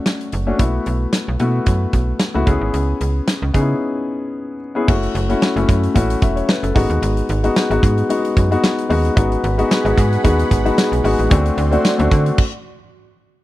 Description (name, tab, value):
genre	1980s-style pop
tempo	112 BPM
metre	4/4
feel	swing 55% on 16ths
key	C# phrygian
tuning	A4 = 440 Hz
part	warm grand piano	accompaniment	0.0-12.4 s	G#3 to E5	-19 LUFS	left 3 dB	none
part	big rock drum kit	drums	0.1-12.5 s	crash cymbal, hi-hat, kick drum, snare drum, tambourine	-18 LUFS	right 1 dB	none
part	slap-like FM bass	bass	0.3-12.3 s	E1 to D3	-19 LUFS	right 1 dB	none
part	phased analog pad	sustained chords	9.2-12.4 s	F#4 to C6	-25 LUFS	right 4 dB	phaser, chorus
room	little or no reverb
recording	dry, close 1970s-style studio recording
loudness	-15 LUFS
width	side -16 dB against mid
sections	0.0-4.9 A section; 4.9-13.4 B section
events	break 3.8-4.9; stop 12.4-13.4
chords	0.0 Dmaj7; 0.6 B7sus4; 2.5 C#m7; 4.9 F#m7; 6.8 G#m7; 11.3 D7